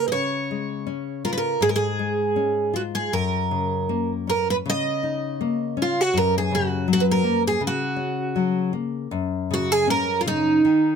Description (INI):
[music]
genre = fado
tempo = 80 BPM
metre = 2/4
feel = rubato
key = F# major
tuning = A4 = 440 Hz
[part]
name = picked twelve-string acoustic guitar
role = melody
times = 0.0-11.0 s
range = D#4 to D#5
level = -22 LUFS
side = right 4 dB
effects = none
[part]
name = nylon-string guitar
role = accompaniment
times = 0.0-11.0 s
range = F#2 to E#4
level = -25 LUFS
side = left 6 dB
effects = none
[sound]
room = light reverb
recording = close, detailed microphones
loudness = -20 LUFS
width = side -6 dB against mid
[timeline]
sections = 0.0-9.1 A section; 9.1-11.0 B section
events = none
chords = 0.1 C#; 3.1 F#6; 6.1 F#; 9.1 F#5